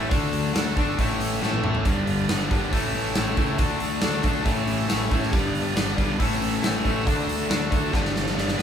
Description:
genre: classic rock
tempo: 138 BPM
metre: 4/4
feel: straight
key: A mixolydian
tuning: A4 = 440 Hz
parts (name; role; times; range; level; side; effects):
- crunchy overdriven guitar; riff; 0.0-8.6 s; G2 to D4; -26 LUFS; left 5 dB; none
- distorted electric guitar; riff; 0.0-8.6 s; A2 to B4; -29 LUFS; right 7 dB; overdrive
- growling picked electric bass; bass; 0.0-8.6 s; G1 to D2; -31 LUFS; right 1 dB; overdrive
- big rock drum kit; drums; 0.1-8.6 s; hi-hat, kick drum, snare drum, toms; -25 LUFS; right 1 dB; none
- bright tonewheel organ; sustained chords; 1.9-8.6 s; A3 to D5; -37 LUFS; right 2 dB; none
room: moderate large studio reverb, RT60 0.9 s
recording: band playing live in one room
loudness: -21 LUFS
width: side -8 dB against mid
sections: 0.0-8.6 A section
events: drum fill 1.4-1.8, 7.9-8.6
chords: 0.1 D; 1.0 A; 1.8 G; 2.7 A; 3.6 D; 4.5 A; 5.3 G; 6.2 A; 7.1 D; 7.9 G

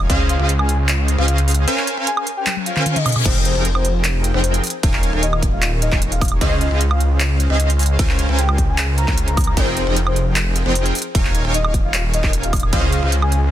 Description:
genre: future bass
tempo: 152 BPM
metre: 4/4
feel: half-time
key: unclear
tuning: A4 = 440 Hz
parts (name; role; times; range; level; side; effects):
- supersaw stab; riff; 0.0-13.5 s; F3 to Ab5; -23 LUFS; right 1 dB; sidechain pumping
- wide detuned saw bass; bass; 0.0-13.5 s; Eb1 to Db2; -18 LUFS; equal; chorus, sidechain pumping
- trap drum kit; drums; 0.0-13.4 s; crash cymbal, handclaps, hi-hat, ride cymbal, toms, woodblock; -22 LUFS; right 1 dB; none
- soft octave-layered synth lead; melody; 0.1-13.4 s; C5 to Bb5; -26 LUFS; left 3 dB; chorus, tremolo, sidechain pumping, ping-pong delay
- electronic kick drum; drums; 0.1-0.2, 3.3-12.8 s; none; -19 LUFS; equal; none
- reverse cymbal; sound effects; 2.7-3.3 s; none; -25 LUFS; left 7 dB; none
room: digital ambience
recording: dense, heavily limited modern master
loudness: -15 LUFS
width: side -12 dB against mid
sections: 0.0-13.5 A section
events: break 1.7-3.3; drum fill 2.5-3.3; reverse cymbal 2.7-3.3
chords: 0.1 Dbmaj9; 1.7 Bbm7/Db; 3.3 Fm11; 4.6 Eb9sus4; 6.4 Dbmaj9; 8.0 Bbm7/Db; 9.6 Fm11; 11.0 Eb9sus4; 12.7 Dbmaj9

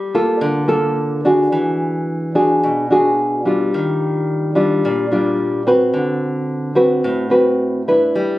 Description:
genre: bossa nova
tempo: 109 BPM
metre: 4/4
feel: straight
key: unclear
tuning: A4 = 440 Hz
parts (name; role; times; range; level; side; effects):
- nylon-string guitar; solo; 0.0-8.4 s; A2 to B4; -14 LUFS; equal; none
room: light reverb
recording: recorded on a phone in the room, club ambience, compression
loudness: -14 LUFS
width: side -16 dB against mid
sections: 0.0-8.4 A section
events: none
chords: 0.0 Gm9; 1.5 E9; 3.7 Ebmaj9; 5.9 D13

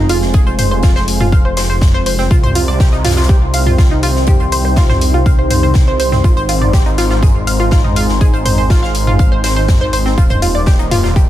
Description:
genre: melodic techno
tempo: 122 BPM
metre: 4/4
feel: straight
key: unclear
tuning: A4 = 440 Hz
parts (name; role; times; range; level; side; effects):
- lush unison pad; sustained chords; 0.0-11.3 s; Eb3 to C4; -23 LUFS; equal; chorus, sidechain pumping
- analog pluck; arpeggios; 0.0-11.2 s; C4 to F6; -19 LUFS; right 1 dB; chorus, sidechain pumping, tape echo
- swelling detuned saw bass; bass; 0.0-11.3 s; Eb1 to C2; -16 LUFS; equal; sidechain pumping
- deep dark ambient pad; texture; 0.0-11.3 s; Eb4 to C6; -22 LUFS; left 1 dB; chorus, built-in reverb, sidechain pumping
- huge arena drum kit; drums; 0.1-11.3 s; hi-hat, snare drum; -27 LUFS; left 2 dB; sidechain pumping on hats, high-pass filter on hats, high-pass filter on snare, high-pass filter on room
- punchy analog drum machine; drums; 0.1-11.0 s; hi-hat, toms; -19 LUFS; equal; overdrive
- electronic kick drum; drums; 0.3-11.3 s; none; -11 LUFS; equal; none
room: little or no reverb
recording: none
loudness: -10 LUFS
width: side -13 dB against mid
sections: 0.0-11.3 A section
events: none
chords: 0.0 Fm; 2.3 Cm; 6.2 Ab; 10.2 Eb

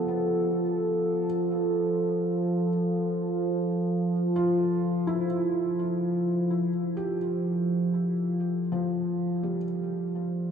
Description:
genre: ambient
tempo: free time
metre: none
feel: none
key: F lydian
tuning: A4 = 440 Hz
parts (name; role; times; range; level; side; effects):
- felt-muted upright piano; arpeggios; 0.0-10.5 s; F3 to G4; -34 LUFS; equal; ping-pong delay
- analog drone; drone; 0.0-10.5 s; F3 to A4; -25 LUFS; right 1 dB; chorus
room: wet cathedral reverb, RT60 5.8 s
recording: dark, warm production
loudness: -25 LUFS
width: side -7 dB against mid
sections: 0.0-10.5 A section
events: fade-out on felt piano 0.0-10.5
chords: 0.0 Fmaj9#11

